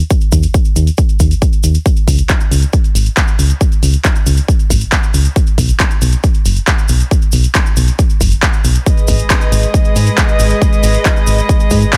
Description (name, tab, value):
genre	uplifting trance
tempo	137 BPM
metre	4/4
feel	straight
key	G# minor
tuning	A4 = 440 Hz
part	solid FM bass	bass	0.0-11.8 s	F#1 to G#2	-14 LUFS	equal	sidechain pumping
part	punchy analog drum machine	drums	0.0-12.0 s	handclaps, hi-hat	-21 LUFS	equal	none
part	cabasa	percussion	0.0-12.0 s	none	-28 LUFS	equal	none
part	electronic kick drum	drums	0.1-12.0 s	none	-15 LUFS	equal	overdrive
part	rich chamber string section	sustained chords	8.9-12.0 s	G#3 to D#5	-19 LUFS	equal	sidechain pumping
room	little or no reverb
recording	none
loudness	-12 LUFS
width	mono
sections	0.0-12.0 A section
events	none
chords	0.0 N.C.; 1.9 C#5; 5.4 B5; 8.9 G#m